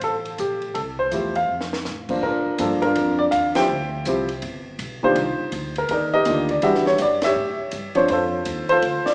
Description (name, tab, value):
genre	jazz piano trio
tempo	164 BPM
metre	4/4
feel	swing 64% on 8ths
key	Bb major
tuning	A4 = 442 Hz
part	warm baby grand piano	melody	0.0-9.1 s	D#3 to G5	-19 LUFS	equal	none
part	upright bass	bass	0.0-9.1 s	G1 to Bb2	-32 LUFS	equal	none
part	compact cocktail drum kit	drums	0.0-9.1 s	crash cymbal, hi-hat, kick drum, ride cymbal, snare drum	-32 LUFS	equal	none
room	wet recital hall reverb, RT60 1.8 s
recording	recorded in a church or concert hall, small speaker sound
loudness	-19 LUFS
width	side -30 dB against mid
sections	0.0-2.2 A section; 2.2-9.1 B section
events	drum fill 1.5-1.9; band accent 3.5, 7.2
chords	0.0 Fmaj9; 1.5 F; 2.2 Bb; 3.7 Dm11; 4.4 Gaug; 5.2 Cm11; 6.6 Em9; 7.4 A7; 8.1 Dm7